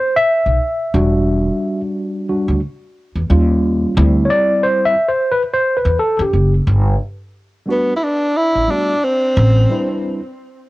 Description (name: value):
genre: hip hop, jazz-hop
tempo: 89 BPM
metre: 4/4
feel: swing 57% on 16ths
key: G major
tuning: A4 = 440 Hz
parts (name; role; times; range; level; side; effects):
- tine electric piano; accompaniment; 0.0-10.2 s; G3 to E5; -16 LUFS; equal; medium stereo tremolo
- upright bass; bass; 0.5-9.6 s; E1 to F#2; -14 LUFS; equal; none
- breathy tenor saxophone; melody; 7.7-10.0 s; B3 to E4; -16 LUFS; equal; cassette tape, analog delay
room: light reverb, small room ambience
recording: home recording on cassette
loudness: -13 LUFS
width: side -19 dB against mid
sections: 0.0-6.7 A section; 6.7-10.7 B section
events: tine electric piano solo 0.0-6.7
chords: 0.0 Amadd9 (rootless); 0.9 Em9; 3.3 Eb9; 4.0 D9sus4; 6.7 Gmaj9; 9.4 Am11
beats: 0.60 | 1.27 1.95 2.62 3.30 | 3.97 4.64 5.32 5.99 | 6.67 7.34 8.02 8.69 | 9.36 10.04